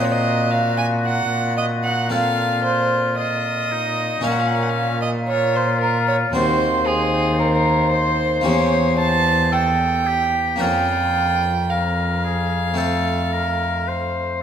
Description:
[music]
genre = classical, baroque-style sonata movement with continuo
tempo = 56 BPM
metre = 4/4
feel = straight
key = Bb minor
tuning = A4 = 441 Hz
[part]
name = warm oboe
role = melody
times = 0.0-14.4 s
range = Db4 to C5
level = -24 LUFS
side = left 6 dB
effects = none
[part]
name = rich violin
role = second line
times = 0.0-14.4 s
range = Ab4 to A5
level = -21 LUFS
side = right 4 dB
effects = none
[part]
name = harpsichord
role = accompaniment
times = 0.0-14.4 s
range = Eb2 to C5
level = -27 LUFS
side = left 2 dB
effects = none
[part]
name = warm cello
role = bass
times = 0.0-14.4 s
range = Eb2 to Bb2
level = -22 LUFS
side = equal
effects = none
[sound]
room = wet recital hall reverb, RT60 1.8 s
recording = none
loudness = -17 LUFS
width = side -8 dB against mid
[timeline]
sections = 0.0-14.4 A section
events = none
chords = 0.0 Ab9/Bb (rootless); 2.1 F/Bb; 4.2 Bbm; 6.4 Cdim/Eb; 8.5 Edim7; 10.6 Bbm/F; 12.8 F

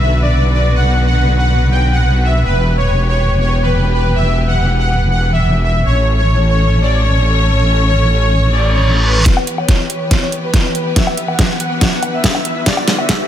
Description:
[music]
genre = heavy wobble dubstep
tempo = 141 BPM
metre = 4/4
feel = half-time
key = E dorian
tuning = A4 = 440 Hz
[part]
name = soft supersaw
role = melody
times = 0.0-13.2 s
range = B4 to G5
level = -18 LUFS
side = equal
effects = low-pass filter, dub echo
[part]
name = rich studio string section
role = sustained chords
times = 0.0-13.3 s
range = D3 to C#5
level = -20 LUFS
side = left 1 dB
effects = sidechain pumping
[part]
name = wobble bass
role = bass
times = 0.0-9.2 s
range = E1 to B1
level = -13 LUFS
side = equal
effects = chorus, overdrive
[part]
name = reverse cymbal and riser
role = sound effects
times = 8.6-13.3 s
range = none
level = -22 LUFS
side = right 1 dB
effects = none
[part]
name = dubstep drum kit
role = drums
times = 9.3-13.2 s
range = hi-hat, snare drum, woodblock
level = -16 LUFS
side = equal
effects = low-pass filter on cymbals, low-pass filter on snare, low-pass filter on hats, low-pass filter on perc, low-pass filter on room
[part]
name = electronic kick drum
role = drums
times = 9.3-13.2 s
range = none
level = -14 LUFS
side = equal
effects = none
[sound]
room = digital ambience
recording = high-pass filter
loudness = -11 LUFS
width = side -10 dB against mid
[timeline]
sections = 0.0-9.3 A section; 9.3-13.3 B section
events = reverse cymbal 8.6-9.3; build-up 9.3-13.3; drum fill 9.3-13.3; riser 9.3-13.3; filter sweep on supersaw synth 9.3-13.3; filter sweep 9.3-13.3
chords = 0.0 Bm; 2.5 Em; 5.9 A; 9.3 Em; 12.7 Bm

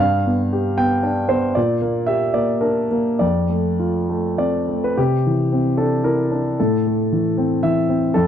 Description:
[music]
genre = neoclassical minimalist piano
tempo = 101-117 BPM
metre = 3/4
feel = rubato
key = C mixolydian from 5.0 s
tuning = A4 = 440 Hz
[part]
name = warm concert grand piano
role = solo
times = 0.0-8.3 s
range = F2 to G5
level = -17 LUFS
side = equal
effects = none
[sound]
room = light reverb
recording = dry, close 1970s-style studio recording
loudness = -17 LUFS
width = side -9 dB against mid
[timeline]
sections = 0.0-5.0 A section; 5.0-8.3 B section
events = none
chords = 0.0 G7; 1.6 Bb6; 3.2 F6; 5.0 Cadd9; 6.6 Am

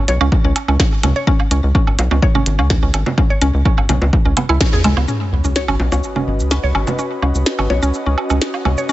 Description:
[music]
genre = minimal techno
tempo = 126 BPM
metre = 4/4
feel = straight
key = unclear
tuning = A4 = 441 Hz
[part]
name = rubbery square bass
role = bass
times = 0.0-8.8 s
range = G#1 to E2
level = -16 LUFS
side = equal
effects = sidechain pumping
[part]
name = mallet-like synth pluck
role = riff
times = 0.1-8.9 s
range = G#3 to C#5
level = -21 LUFS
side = equal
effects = chorus, sidechain pumping, tape echo
[part]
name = minimal click drum kit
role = drums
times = 0.1-8.9 s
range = cabasa, hi-hat, snare drum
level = -22 LUFS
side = equal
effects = overdrive
[part]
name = bongos, woodblock and congas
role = percussion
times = 0.1-8.8 s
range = none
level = -23 LUFS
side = right 3 dB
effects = overdrive, tape echo
[part]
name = electronic kick drum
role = drums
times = 0.3-4.7 s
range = none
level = -15 LUFS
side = equal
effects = none
[part]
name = sub drop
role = sound effects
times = 5.1-7.0 s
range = none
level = -26 LUFS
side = equal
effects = none
[part]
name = airy breathy pad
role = texture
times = 5.4-8.9 s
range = C#4 to D#5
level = -24 LUFS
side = left 1 dB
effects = chorus, sidechain pumping
[sound]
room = light reverb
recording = nothing above 7.9 kHz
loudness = -14 LUFS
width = side -15 dB against mid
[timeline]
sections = 0.0-5.1 A section; 5.1-8.9 B section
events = band accent 4.6; impact 5.1-7.0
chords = 0.0 C#7(no3)

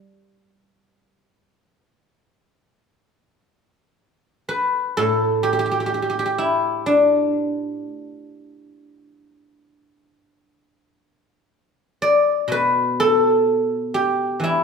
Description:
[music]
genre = chinese traditional, Chinese solo plucked strings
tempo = 63 BPM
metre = 4/4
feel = uneven beats, rubato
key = G gong mode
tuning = A4 = 441 Hz
[part]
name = guzheng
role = solo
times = 0.0-14.6 s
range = A2 to D5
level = -18 LUFS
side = left 1 dB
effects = none
[sound]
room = wet recital hall reverb, RT60 1.3 s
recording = minimal, uncompressed stereo recording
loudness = -17 LUFS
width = side -5 dB against mid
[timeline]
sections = 0.0-3.0 A section; 3.0-14.6 B section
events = none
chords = none

